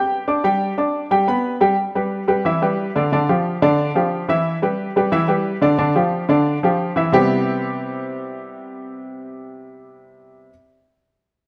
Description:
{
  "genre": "latin",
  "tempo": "180 BPM",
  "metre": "4/4",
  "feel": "straight",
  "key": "C major",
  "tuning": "A4 = 441 Hz",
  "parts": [
    { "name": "warm upright piano", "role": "solo", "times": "0.0-10.5 s", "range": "C3 to G6", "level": "-20 LUFS", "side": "equal", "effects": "none" }
  ],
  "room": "wet stone room reverb, RT60 1.5 s",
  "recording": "band playing live in one room",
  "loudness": "-19 LUFS",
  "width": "mono",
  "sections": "0.0-1.8 A section; 1.8-7.1 B section; 7.1-9.8 C section",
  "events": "none",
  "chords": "0.4 G; 1.8 G6; 3.1 G5; 4.5 G6; 5.8 G5; 7.1 Cmaj7",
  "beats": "0.11 | 0.45 0.78 1.12 1.45 | 1.78 2.12 2.45 2.79 | 3.12 3.45 3.79 4.12 | 4.45 4.79 5.12 5.46 | 5.79 6.12 6.46 6.79 | 7.12 7.46 7.79 8.12 | 8.46 8.79 9.12 9.46"
}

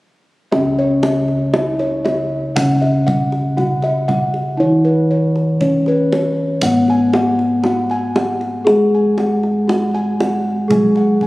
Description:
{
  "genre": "Javanese gamelan",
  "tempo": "59 BPM",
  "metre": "4/4",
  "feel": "straight",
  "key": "C# slendro",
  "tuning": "A4 = 440 Hz",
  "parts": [
    { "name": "gamelan-type bronze metallophone", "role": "melody", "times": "0.5-11.3 s", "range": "B3-25c to G#4", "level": "-20 LUFS", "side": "left 1 dB", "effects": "none" },
    { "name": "gamelan-type bronze metallophone", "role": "accompaniment", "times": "0.5-11.3 s", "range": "C#3 to B3-25c", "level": "-18 LUFS", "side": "equal", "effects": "none" },
    { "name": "gamelan-type bossed gongs", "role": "arpeggios", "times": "0.5-11.3 s", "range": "B4-25c to G#5", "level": "-21 LUFS", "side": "equal", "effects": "none" },
    { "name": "gamelan-type bossed gongs", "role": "bass", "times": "0.5-11.3 s", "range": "C#2 to G#4", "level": "-23 LUFS", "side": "equal", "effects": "none" },
    { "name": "kendang", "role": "percussion", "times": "0.5-11.3 s", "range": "none", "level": "-22 LUFS", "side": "right 1 dB", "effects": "none" }
  ],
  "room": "moderate concert hall reverb, RT60 2.2 s",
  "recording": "recorded on a phone in the room, club reverb",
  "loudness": "-14 LUFS",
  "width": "side -19 dB against mid",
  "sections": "0.5-11.3 A section",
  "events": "none",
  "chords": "none",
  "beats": "| 0.53 1.55 2.56 3.58 | 4.60 5.62 6.63 7.65 | 8.67 9.68 10.70"
}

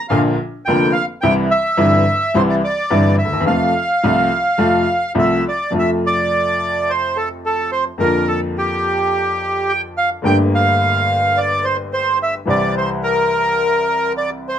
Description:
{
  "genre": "tango",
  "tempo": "107 BPM",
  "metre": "4/4",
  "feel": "rubato",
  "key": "F major",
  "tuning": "A4 = 442 Hz",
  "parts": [
    { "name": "bandoneon", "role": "melody", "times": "0.0-14.6 s", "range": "G4 to G5", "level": "-17 LUFS", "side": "right 1 dB", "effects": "none" },
    { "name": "bright upright piano", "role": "accompaniment", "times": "0.1-14.6 s", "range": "F1 to G4", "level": "-18 LUFS", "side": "left 1 dB", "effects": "none" }
  ],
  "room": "moderate studio ambience, RT60 0.5 s",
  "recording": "dark, warm production",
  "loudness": "-14 LUFS",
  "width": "side -9 dB against mid",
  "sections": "0.0-5.7 A section; 5.7-14.6 A section",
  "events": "none",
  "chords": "0.0 Bb; 1.2 C; 3.5 F; 8.0 Bb/F; 10.2 Gmadd9; 12.5 C",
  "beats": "0.10 0.67 | 1.23 1.79 2.35 2.91 | 3.47 4.04 4.60 5.17 | 5.74 6.30 6.87 7.43 | 7.99 8.55 9.12 9.68 | 10.24 10.80 11.36 11.92 | 12.48 13.04 13.61 14.17"
}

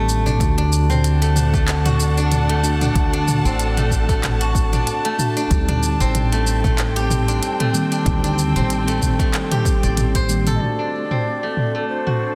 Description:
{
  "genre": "organic downtempo",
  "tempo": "94 BPM",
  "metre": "4/4",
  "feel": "swing 56% on 16ths",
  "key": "unclear",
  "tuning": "A4 = 441 Hz",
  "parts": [
    { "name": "mellow tine electric piano", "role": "accompaniment", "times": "0.0-12.3 s", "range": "Eb3 to G4", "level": "-28 LUFS", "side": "equal", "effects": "sidechain pumping, tape echo, shimmer reverb" },
    { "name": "steel-string zither", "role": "arpeggios", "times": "0.0-12.3 s", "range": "A3 to D5", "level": "-26 LUFS", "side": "equal", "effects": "low-pass filter, tape echo, shimmer reverb" },
    { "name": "upright bass", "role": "bass", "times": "0.0-10.6 s", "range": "A1 to D2", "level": "-22 LUFS", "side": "equal", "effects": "sidechain pumping" },
    { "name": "organic electronic drum kit", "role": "drums", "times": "0.1-12.3 s", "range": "handclaps, hi-hat, shaker, toms", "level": "-26 LUFS", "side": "equal", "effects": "low-pass filter on perc, low-pass filter on toms, low-pass filter on snare, low-pass filter on hats" },
    { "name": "electronic kick drum", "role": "drums", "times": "0.4-10.3 s", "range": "none", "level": "-23 LUFS", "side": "equal", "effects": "overdrive" },
    { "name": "dark chamber string section", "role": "sustained chords", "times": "0.9-12.3 s", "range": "C4 to A5", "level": "-30 LUFS", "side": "equal", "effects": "sidechain pumping, low-pass filter, shimmer reverb" },
    { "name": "breathy reedy ney", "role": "melody", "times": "10.5-12.3 s", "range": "C5 to Eb5", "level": "-28 LUFS", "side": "equal", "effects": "tape echo, shimmer reverb" }
  ],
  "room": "light reverb, studio ambience",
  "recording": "dense, heavily limited modern master",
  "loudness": "-19 LUFS",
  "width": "mono",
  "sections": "0.0-10.6 A section; 10.6-12.3 B section",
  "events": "filter sweep on drum 10.6-12.3",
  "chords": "0.4 D; 5.5 Cm7; 10.6 D",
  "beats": "| 0.40 1.04 1.68 2.32 | 2.96 3.60 4.23 4.87 | 5.51 6.15 6.79 7.42 | 8.06 8.70 9.34 9.98 | 10.62 11.25 11.89"
}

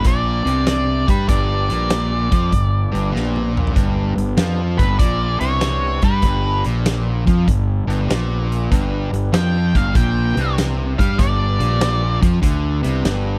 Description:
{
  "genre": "blues rock power trio and southern rock",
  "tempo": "97 BPM",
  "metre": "4/4",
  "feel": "swing 67% on 8ths",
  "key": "G mixolydian",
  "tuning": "A4 = 441 Hz",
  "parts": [
    { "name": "octave-fuzz lead guitar", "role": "melody", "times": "0.0-12.2 s", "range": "B4 to G5", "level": "-25 LUFS", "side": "equal", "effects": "distortion" },
    { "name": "overdriven electric guitar", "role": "riff", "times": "0.0-13.4 s", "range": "G2 to G3", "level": "-24 LUFS", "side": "equal", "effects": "none" },
    { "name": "fuzz fingered electric bass", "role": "bass", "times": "0.0-13.4 s", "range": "G1 to G2", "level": "-23 LUFS", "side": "equal", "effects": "overdrive" },
    { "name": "huge arena drum kit", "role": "drums", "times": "0.0-13.2 s", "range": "hi-hat, kick drum, snare drum, toms", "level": "-22 LUFS", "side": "equal", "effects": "none" },
    { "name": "tonewheel organ", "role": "sustained chords", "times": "0.5-13.4 s", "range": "G3 to D5", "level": "-32 LUFS", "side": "equal", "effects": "overdrive, chorus vibrato, slow rotary speaker" }
  ],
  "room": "little or no reverb",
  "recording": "dry, close 1970s-style studio recording",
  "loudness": "-18 LUFS",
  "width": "mono",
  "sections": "0.0-13.4 A section",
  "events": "drum fill 3.1-3.8",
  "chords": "0.0 G",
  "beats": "0.05 0.67 | 1.29 1.91 2.53 3.14 | 3.76 4.38 5.00 5.62 | 6.24 6.86 7.47 8.09 | 8.71 9.33 9.95 10.57 | 11.19 11.81 12.43 13.05"
}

